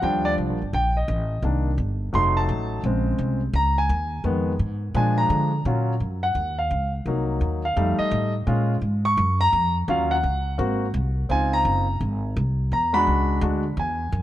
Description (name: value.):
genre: jazz, big band swing.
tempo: 170 BPM.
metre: 4/4.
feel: swing 64% on 8ths.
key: Eb minor from 5.7 s.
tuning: A4 = 438 Hz.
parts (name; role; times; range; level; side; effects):
clear concert grand piano; accompaniment; 0.0-14.2 s; Db3 to Db6; -23 LUFS; equal; none.
upright bass; bass; 0.0-14.2 s; F1 to D3; -24 LUFS; equal; none.
room: light reverb.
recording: dark, warm production.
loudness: -20 LUFS.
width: side -13 dB against mid.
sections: 0.0-5.7 A section; 5.7-14.2 A section.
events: grand piano solo 0.0-14.2.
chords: 0.0 Ebmaj9; 1.4 Cm7; 2.1 F7b9; 2.8 Bbm9; 4.3 Fm7b5; 5.0 Bb7; 5.7 Ebm7; 7.1 Cm7b5; 7.8 F7; 8.5 Bbm7; 9.9 Ebm7; 10.6 Ab7; 11.3 Dbmaj7; 12.7 E9.